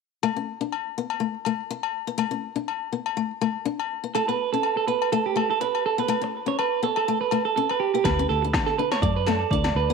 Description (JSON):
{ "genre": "highlife guitar band", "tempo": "123 BPM", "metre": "4/4", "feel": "swing 55% on 16ths", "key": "D major", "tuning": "A4 = 440 Hz", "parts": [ { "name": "picked old ladder-braced acoustic guitar", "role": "accompaniment", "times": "0.2-9.9 s", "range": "A3 to D4", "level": "-28 LUFS", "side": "left 11 dB", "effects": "none" }, { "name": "agogo bells", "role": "percussion", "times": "0.2-9.8 s", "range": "none", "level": "-30 LUFS", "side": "left 13 dB", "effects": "none" }, { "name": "clean electric guitar", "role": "arpeggios", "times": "4.2-9.9 s", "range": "G4 to D5", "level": "-24 LUFS", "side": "right 12 dB", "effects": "spring reverb, tape echo" }, { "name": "fingered electric bass", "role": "bass", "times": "8.0-9.9 s", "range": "D2 to D3", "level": "-26 LUFS", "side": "equal", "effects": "none" }, { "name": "80s electronic pad drums", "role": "drums", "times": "8.0-9.7 s", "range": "kick drum, snare drum", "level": "-27 LUFS", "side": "equal", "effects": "none" } ], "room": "light reverb, studio ambience", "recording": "1960s-style stereo with parts hard left and right", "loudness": "-22 LUFS", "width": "side -5 dB against mid", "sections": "0.2-8.0 A section; 8.0-9.9 B section", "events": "none", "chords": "0.2 D5; 4.1 A; 8.0 D", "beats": "| 0.22 0.71 1.20 1.69 | 2.18 2.67 3.16 3.65 | 4.14 4.63 5.12 5.60 | 6.09 6.58 7.07 7.56 | 8.05 8.53 9.02 9.51" }